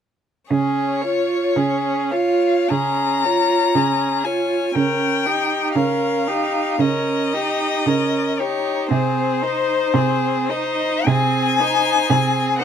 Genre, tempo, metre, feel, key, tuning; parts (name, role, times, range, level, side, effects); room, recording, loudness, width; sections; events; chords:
classical, slow romantic movement for string quartet; 49-60 BPM; 4/4; rubato; Db major; A4 = 440 Hz
rich violin; melody; 0.5-12.6 s; C5 to Bb5; -22 LUFS; left 8 dB
rich violin; second line; 0.5-12.6 s; G4 to Db5; -23 LUFS; left 2 dB
rich viola; accompaniment; 0.5-12.6 s; C4 to F4; -22 LUFS; right 4 dB
clear cello; bass; 0.5-12.6 s; C3 to Db3; -22 LUFS; right 5 dB
little or no reverb; close, detailed microphones; -17 LUFS; side -8 dB against mid
0.5-12.6 A section
0.5 Db; 4.8 Eb7/Db; 8.9 Ab/C